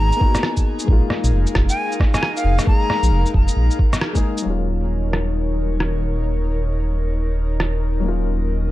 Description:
future garage; 134 BPM; 4/4; swing 61% on 16ths; Eb minor; A4 = 441 Hz
bright silver concert flute; melody; 0.0-3.3 s; F5 to Bb5; -25 LUFS; left 1 dB; digital delay
felt-muted upright piano; accompaniment; 0.0-8.7 s; Gb3 to Ab4; -28 LUFS; left 5 dB; sidechain pumping, digital delay
airy breathy pad; sustained chords; 0.0-8.7 s; Eb4 to Ab5; -28 LUFS; left 2 dB; chorus, sidechain pumping
swelling detuned saw bass; bass; 0.0-8.7 s; Eb1 to Bb1; -19 LUFS; equal; sidechain pumping
electronic shaker and rim click; drums; 0.1-7.7 s; -24 LUFS; equal; low-pass filter on perc, low-pass filter on snare
electronic kick drum; drums; 0.2-4.2 s; -16 LUFS; equal
digital ambience; dark, warm production; -17 LUFS; side -16 dB against mid
0.0-4.5 A section; 4.5-8.7 B section
band accent 4.0
0.0 Abm7; 0.9 Bb7sus4; 4.5 Ebm7

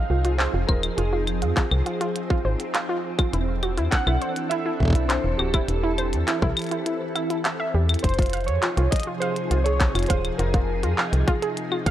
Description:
IDM; 102 BPM; 4/4; straight; A4 = 442 Hz
warbly lo-fi synth keys; melody; 0.0-11.9 s; G4 to Gb5; -30 LUFS; right 2 dB; chorus, tape echo
soft string machine; sustained chords; 0.0-11.9 s; C3 to A4; -30 LUFS; equal; phaser, ensemble chorus
warbly dusty pluck; arpeggios; 0.1-11.9 s; E4 to F5; -29 LUFS; right 2 dB; chorus, digital delay
metallic FM bass; bass; 0.1-11.9 s; D1 to F2; -24 LUFS; equal
glitchy drum kit; drums; 0.2-11.9 s; claves, handclaps, hi-hat; -28 LUFS; left 1 dB
electronic kick drum; drums; 0.7-11.9 s; -22 LUFS; equal
light reverb; worn, warbling old tape, cassette tape, warbly pitch drift; -21 LUFS; side -12 dB against mid
0.0-8.0 A section; 8.0-11.9 B section
kick drops out 6.9-8.0
0.0 Fm7; 3.3 C6; 8.0 Fm7

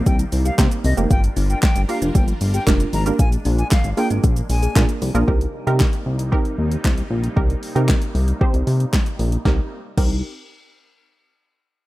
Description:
dance-pop; 115 BPM; 4/4; straight; C minor; A4 = 439 Hz
wide unison pluck; accompaniment; 0.0-10.2 s; Bb3 to C5; -25 LUFS; right 3 dB; sidechain pumping, low-pass filter
filtered supersaw swell; sustained chords; 0.0-9.7 s; C3 to Bb4; -34 LUFS; equal; sidechain pumping, low-pass filter
thumb-piano-like synth pluck; arpeggios; 0.0-5.1 s; Eb3 to F5; -31 LUFS; left 4 dB
chorused synth bass; bass; 0.0-10.2 s; F1 to C3; -20 LUFS; equal; sidechain pumping
bright reedy silver concert flute; melody; 0.1-4.9 s; Eb5 to Bb5; -29 LUFS; left 2 dB; sidechain pumping, ping-pong delay
deep house drum kit; drums; 0.1-10.1 s; crash cymbal, handclaps, hi-hat, kick drum, shaker, snare drum; -19 LUFS; equal; overdrive
digital ambience; rough home demo mix; -16 LUFS; side -17 dB against mid
0.0-5.3 A section; 5.3-9.5 B section; 9.5-11.5 C section
drop 0.0-5.3
0.0 Cm7; 1.1 Gm7; 3.2 Bb7; 5.3 Cm7

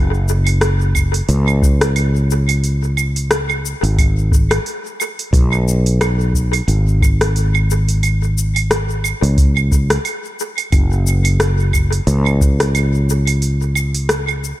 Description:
sunset chillout; 89 BPM; 4/4; swing 56% on 16ths; A4 = 440 Hz
fretless electric bass; bass; 0.0-14.5 s; F#1 to C#2; -15 LUFS; equal
smooth R&B drum kit; drums; 0.1-14.6 s; cabasa, claves, hi-hat, rim click; -20 LUFS; right 1 dB; overdrive, tape echo
electronic kick drum; drums; 0.9-12.6 s; -15 LUFS; equal
little or no reverb; echo-heavy mix; -13 LUFS; side -15 dB against mid
0.0-14.6 A section

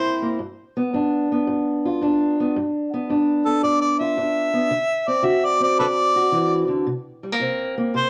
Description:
acoustic country blues, solo or duo; 111 BPM; 4/4; swing 68% on 8ths; A4 = 440 Hz
warm harmonica; melody; 0.0-8.1 s; A4 to E5; -22 LUFS; equal; plate reverb
fingerpicked steel-string acoustic guitar; accompaniment; 0.0-8.1 s; G2 to F#4; -23 LUFS; equal
moderate studio reverb, RT60 0.7 s; worn, warbling old tape, cassette tape, warbly pitch drift; -21 LUFS; mono
0.0-8.1 A section
0.4 G7; 4.7 D7; 6.9 C7(no3)

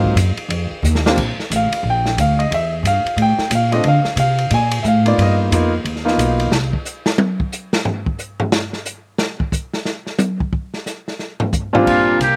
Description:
jazz, small-group swing and bop; 179 BPM; 4/4; swing 64% on 8ths; Bb major; A4 = 439 Hz
warm concert grand piano; accompaniment; 0.0-6.5, 11.7-12.2 s; Bb2 to Ab5; -20 LUFS; equal; slapback echo
upright bass; bass; 0.0-6.7, 11.9-12.4 s; A1 to D3; -20 LUFS; equal
open jazz drum kit; drums; 0.0-12.3 s; crash cymbal, hi-hat, kick drum, ride cymbal, snare drum, toms; -23 LUFS; equal
trumpet with metal mute; melody; 11.9-12.4 s; F4 to G4; -18 LUFS; equal
warm tenor saxophone; second line; 11.9-12.4 s; Bb3; -28 LUFS; equal
little or no reverb; recorded outdoors, with no room sound; -18 LUFS; mono
0.0-1.2 A section; 1.2-11.9 A section
drum fill 0.8-1.2; drum solo 6.5-11.9
0.5 F5; 1.2 Bb6; 2.5 Em; 3.2 Ebmaj9#11/A; 3.8 Dm7; 5.2 G7alt; 6.5 N.C.; 11.2 Bb6

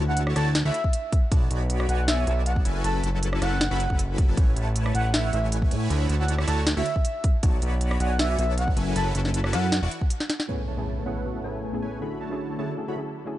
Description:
future bass; 157 BPM; 4/4; half-time; A major; A4 = 440 Hz
big bright polysynth; riff; 0.0-13.0 s; D3 to C#6; -31 LUFS; equal; chorus, phaser, sidechain pumping
fat analog bass; bass; 0.0-9.9 s; E1 to A2; -24 LUFS; equal; sidechain pumping
breathy flute-like synth lead; melody; 0.1-9.8 s; E5 to A5; -31 LUFS; equal; wide subtle chorus, sidechain pumping, tape echo
trap drum kit; drums; 0.2-10.6 s; crash cymbal, hi-hat, rim click, snare drum; -28 LUFS; equal; low-pass filter on snare, low-pass filter on hats, low-pass filter on cymbals
electronic kick drum; drums; 0.8-10.1 s; -22 LUFS; equal
soft round pluck; accompaniment; 10.5-13.4 s; A2 to G#4; -33 LUFS; right 1 dB; chorus, sidechain pumping, tape echo
muted chamber string section; sustained chords; 10.5-13.4 s; C#3 to A4; -40 LUFS; left 2 dB; sidechain pumping, low-pass filter
impact; sound effects; 10.5-12.0 s; -34 LUFS; equal
little or no reverb; nothing above 10.5 kHz; -22 LUFS; side -14 dB against mid
0.0-10.5 A section; 10.5-13.4 B section
drop 0.0-10.5; break 10.1-10.5; drum fill 10.2; impact 10.5-12.0; filter sweep on string section 10.5-13.4
0.0 Dmaj9; 1.3 Bm9; 2.7 F#m11; 4.4 Amaj9; 5.9 Dmaj9; 7.4 Bm9; 8.8 F#m11; 9.7 Esus2; 10.5 Amaj9; 12.0 Dmaj9#11

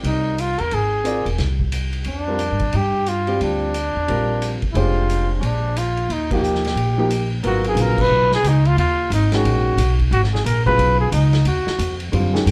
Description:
modal jazz; 179 BPM; 4/4; swing 62% on 8ths; G# dorian from 7.4 s; A4 = 442 Hz
warm upright piano; accompaniment; 0.0-12.5 s; C#3 to D5; -26 LUFS; equal
upright bass; bass; 0.0-12.5 s; E1 to G2; -22 LUFS; equal
vintage drum kit; drums; 0.0-12.5 s; crash cymbal, hi-hat, kick drum, ride cymbal, snare drum; -30 LUFS; equal
breathy trumpet; melody; 0.1-12.0 s; Db4 to B4; -24 LUFS; equal
wet club reverb, RT60 0.8 s; heard from further back in the room; -19 LUFS; mono
0.0-7.4 A section; 7.4-12.5 B section
band accent 6.3, 7.9
0.0 Fm; 2.1 Gm7; 6.1 Eb; 7.4 G#m9

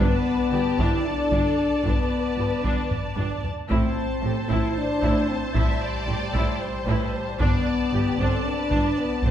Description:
cinematic, epic orchestral film score; 227 BPM (eighths); 7/8; straight; A4 = 440 Hz
warm symphonic violin section; melody; 0.0-9.3 s; A5; -35 LUFS; left 2 dB
warm symphonic violin section; second line; 0.0-9.3 s; G4 to E5; -34 LUFS; left 2 dB
clear symphonic viola section; accompaniment; 0.0-9.3 s; C4 to D5; -31 LUFS; right 2 dB
mellow French horn section; sustained chords; 0.0-9.3 s; G3 to E4; -25 LUFS; left 2 dB
rich symphonic cello section; bass; 0.0-9.3 s; G2 to A2; -30 LUFS; right 2 dB
warm symphonic double bass section; bass; 0.0-9.3 s; G1 to A1; -31 LUFS; right 3 dB
taiko ensemble; drums; 0.0-9.3 s; -27 LUFS; equal
wet recital hall reverb, RT60 1.5 s; heard from further back in the room; -21 LUFS; side -10 dB against mid
0.0-9.3 A section
drum fill 2.9-3.7
0.0 Gadd9; 3.7 Am7; 7.4 Gadd9

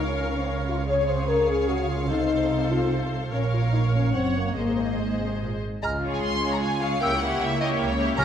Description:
classical, dramatic, fast romantic movement for symphony orchestra; 141-154 BPM; 3/4; straight; Db major; A4 = 441 Hz
warm symphonic violin section; melody; 0.0-8.2 s; Db5 to C6; -32 LUFS; left 2 dB
warm symphonic violin section; second line; 0.0-8.2 s; G4 to Db5; -32 LUFS; left 2 dB
rich studio viola section; accompaniment; 0.0-8.2 s; Ab3 to Db5; -32 LUFS; right 1 dB
mellow French horn section; sustained chords; 0.0-8.2 s; Ab3 to Db5; -27 LUFS; left 4 dB
dark studio double bass section; bass; 0.0-8.2 s; Gb1 to Db2; -29 LUFS; right 3 dB
warm symphonic cello section; bass; 0.0-8.2 s; Gb2 to Db3; -30 LUFS; right 3 dB
silver concert flute; second line; 5.8-8.2 s; Fb6 to F6; -30 LUFS; left 1 dB
warm bassoon; accompaniment; 5.8-8.2 s; Ab3 to Db4; -32 LUFS; right 1 dB
timpani; percussion; 8.2 s; Db3; -27 LUFS; equal
moderate concert hall reverb, RT60 1.9 s; -22 LUFS; side -9 dB against mid
0.0-5.8 A section; 5.8-8.2 B section
0.0 Bbm/Db; 0.9 Db; 2.1 F7/C; 3.3 Bbm; 4.1 Gb; 4.6 Ab; 5.8 Db; 7.0 Dbdim7

